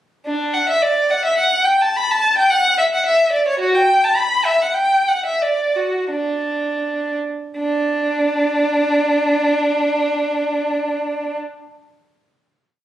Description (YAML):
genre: classical, baroque-style suite movement for unaccompanied violin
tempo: 78-110 BPM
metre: 3/4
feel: rubato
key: D major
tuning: A4 = 441 Hz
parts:
  - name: rich violin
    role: solo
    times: 0.3-11.4 s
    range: D4 to B5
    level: -16 LUFS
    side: equal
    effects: none
room: wet stone room reverb, RT60 0.9 s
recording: recorded on a phone in the room, club reverb, compression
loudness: -15 LUFS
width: side -12 dB against mid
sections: 0.3-7.6 A section; 7.6-11.9 final note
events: slowing down 2.8-7.6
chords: none